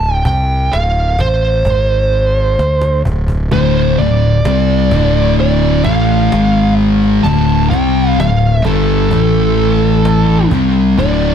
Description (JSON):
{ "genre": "stoner and doom metal", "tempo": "64 BPM", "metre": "4/4", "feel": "straight", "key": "unclear", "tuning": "A4 = 440 Hz", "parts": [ { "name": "fuzz lead guitar", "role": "melody", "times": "0.0-11.3 s", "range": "A4 to A5", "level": "-16 LUFS", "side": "right 3 dB", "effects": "distortion" }, { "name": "fuzz fingered electric bass", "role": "bass", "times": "0.0-11.3 s", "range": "D1 to D2", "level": "-16 LUFS", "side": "equal", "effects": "overdrive" }, { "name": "cajon", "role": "drums", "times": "0.3-11.2 s", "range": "none", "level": "-22 LUFS", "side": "equal", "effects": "none" }, { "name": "thick fuzz guitar", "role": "riff", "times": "3.5-11.3 s", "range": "D2 to C4", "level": "-14 LUFS", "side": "left 11 dB", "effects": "distortion" }, { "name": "thick fuzz guitar", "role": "riff", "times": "3.5-11.3 s", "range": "D2 to C4", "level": "-16 LUFS", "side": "right 9 dB", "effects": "distortion" } ], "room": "light reverb, digital ambience", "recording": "dark, warm production", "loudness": "-10 LUFS", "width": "side -8 dB against mid", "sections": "0.0-11.3 A section", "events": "drum fill 2.6-3.5", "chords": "0.0 D5; 1.7 G#; 2.6 D5; 6.3 G#5; 7.2 D5; 9.1 A5; 10.5 D5" }